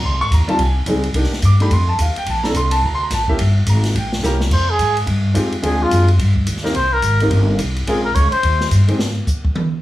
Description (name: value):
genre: jazz, small-group swing and bop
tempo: 214 BPM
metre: 4/4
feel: swing 62% on 8ths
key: F minor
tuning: A4 = 440 Hz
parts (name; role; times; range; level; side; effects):
- warm grand piano; accompaniment; 0.0-9.0 s; G3 to D6; -20 LUFS; equal; none
- upright bass; bass; 0.0-9.2 s; G1 to Ab2; -16 LUFS; equal; none
- open jazz drum kit; drums; 0.0-9.6 s; crash cymbal, hi-hat, kick drum, ride cymbal, snare drum, toms; -23 LUFS; equal; none
- trumpet with cup mute; melody; 4.5-8.7 s; F4 to Db5; -18 LUFS; left 1 dB; plate reverb
room: light reverb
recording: small room reverb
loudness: -14 LUFS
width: side -15 dB against mid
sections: 0.0-4.5 A section; 4.5-9.8 A section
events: drum fill 4.2; muted trumpet solo 4.5-9.8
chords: 0.0 Dbmaj7sus2; 1.2 Cm9; 1.7 Eb69; 2.3 Bbmaj9#11; 3.4 C7b9; 4.5 Fm9; 5.6 Dm7b5; 6.2 Eb6; 6.7 Cm7; 7.9 Bbm9; 8.4 Eb; 9.0 N.C.